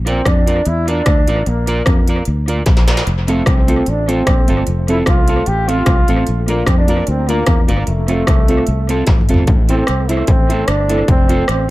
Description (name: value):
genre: ska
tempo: 150 BPM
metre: 4/4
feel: swing 54% on 8ths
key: F major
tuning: A4 = 441 Hz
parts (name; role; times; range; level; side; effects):
- fingered electric bass; bass; 0.0-11.7 s; F1 to F2; -17 LUFS; equal; none
- clear trombone; melody; 0.1-11.7 s; A3 to G4; -20 LUFS; right 1 dB; analog delay
- electric guitar at the edge of break-up; accompaniment; 0.1-11.4 s; C4 to D5; -21 LUFS; right 2 dB; none
- industrial drum kit; drums; 0.1-11.6 s; hi-hat, kick drum, rim click, snare drum, toms; -14 LUFS; equal; distortion
- warm upright piano; stabs; 3.3-11.4 s; A3 to Bb4; -22 LUFS; left 1 dB; analog delay
room: light reverb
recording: none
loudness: -12 LUFS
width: side -18 dB against mid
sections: 0.0-9.5 A section; 9.5-11.7 B section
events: drum fill 2.7-3.1, 9.1-9.5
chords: 0.0 Bb; 3.1 F; 6.3 Bb; 7.9 F; 9.5 Am; 11.1 F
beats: 0.26 0.66 1.06 | 1.46 1.86 2.26 2.66 | 3.07 3.47 3.87 4.27 | 4.67 5.07 5.47 5.87 | 6.27 6.67 7.08 7.48 | 7.88 8.28 8.68 9.08 | 9.48 9.88 10.28 10.68 | 11.08 11.48